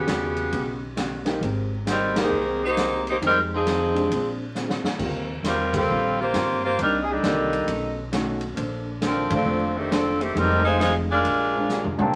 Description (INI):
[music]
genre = jazz, big band swing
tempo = 134 BPM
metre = 4/4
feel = swing 65% on 8ths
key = Bb major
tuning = A4 = 438 Hz
[part]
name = bright saxophone section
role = melody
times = 0.0-12.0 s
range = Db3 to C5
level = -25 LUFS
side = equal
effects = none
[part]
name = upright bass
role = bass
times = 0.0-12.1 s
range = F1 to Bb2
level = -33 LUFS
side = equal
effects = none
[part]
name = vintage hollow-body jazz guitar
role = accompaniment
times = 0.1-12.0 s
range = Bb2 to C5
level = -35 LUFS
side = equal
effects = none
[part]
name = swinging big-band drum kit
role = drums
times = 0.1-12.1 s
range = crash cymbal, hi-hat, kick drum, ride cymbal, snare drum, toms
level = -33 LUFS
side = equal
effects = none
[part]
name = warm grand piano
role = accompaniment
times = 1.3-11.7 s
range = Eb3 to D5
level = -31 LUFS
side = equal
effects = none
[part]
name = mellow trombone section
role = second line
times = 12.0-12.2 s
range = G3 to D4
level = -24 LUFS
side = equal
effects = none
[sound]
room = wet studio reverb, RT60 0.8 s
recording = vinyl crackle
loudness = -24 LUFS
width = mono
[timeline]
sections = 0.0-12.1 A section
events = band accent 2.1, 5.7, 9.2; drum fill 4.5-5.0, 11.7-12.1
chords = 0.0 Eb7alt; 1.4 Abmaj9; 3.2 Fm7; 4.1 Bb9; 5.0 Eb69; 6.8 Cm9; 7.7 B9; 8.6 Bbmaj9; 10.4 Fm7; 11.3 Bb13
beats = 0.07 0.52 0.97 | 1.42 1.86 2.31 2.76 | 3.21 3.65 4.10 4.55 | 5.00 5.45 5.89 6.34 | 6.79 7.24 7.68 8.13 | 8.57 9.02 9.47 9.91 | 10.36 10.81 11.25 11.70 | 12.14